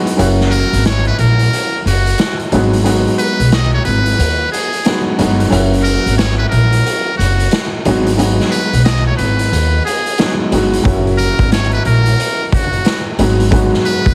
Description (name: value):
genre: hip hop, boom-bap hip-hop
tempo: 90 BPM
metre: 4/4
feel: swing 62% on 16ths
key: unclear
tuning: A4 = 440 Hz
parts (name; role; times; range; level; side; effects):
- clear upright piano; accompaniment; 0.0-14.1 s; F#3 to F#4; -20 LUFS; equal; high-pass filter, low-pass filter
- raw garage drum kit; drums; 0.1-14.1 s; hi-hat, kick drum, snare drum; -20 LUFS; equal; none
- upright bass; bass; 0.2-14.1 s; F#1 to D#2; -17 LUFS; equal; none
- trumpet with metal mute; melody; 0.5-14.1 s; F#4 to D#5; -21 LUFS; equal; high-pass filter, low-pass filter, slapback echo
room: studio reverb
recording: heavily compressed radio sound, vinyl crackle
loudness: -14 LUFS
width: mono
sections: 0.2-14.1 A section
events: break 0.0; kick muted 0.2-10.9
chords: 0.2 F#7; 2.5 G#m7; 5.5 F#7; 7.9 G#m7; 10.9 F#7; 13.2 G#m7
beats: | 0.19 0.85 1.52 2.19 | 2.85 3.52 4.19 4.85 | 5.52 6.19 6.85 7.52 | 8.19 8.85 9.52 10.19 | 10.85 11.52 12.19 12.85 | 13.52